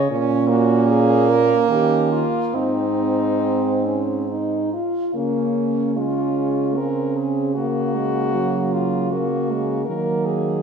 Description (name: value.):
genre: classical, lyrical piece for horn quartet.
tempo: 68-80 BPM.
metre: 3/4.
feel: rubato.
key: Db major.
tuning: A4 = 440 Hz.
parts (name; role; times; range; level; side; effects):
clear French horn; melody; 0.0-10.6 s; Eb4 to Bb4; -24 LUFS; left 3 dB; none.
mellow French horn; bass; 0.0-10.6 s; Ab2 to Eb3; -24 LUFS; right 3 dB; none.
clear French horn; second line; 0.1-10.6 s; Bb3 to Db4; -23 LUFS; right 7 dB; none.
mellow French horn; accompaniment; 0.1-10.6 s; Gb3 to F4; -23 LUFS; equal; none.
room: wet recital hall reverb, RT60 1.4 s.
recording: recorded in a church or concert hall.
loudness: -18 LUFS.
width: side -6 dB against mid.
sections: 0.0-5.1 A section; 5.1-10.6 B section.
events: none.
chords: 0.1 Bbm; 1.7 Eb7; 2.5 Ab; 5.1 Db; 7.6 Gb/Db; 9.9 Ebm.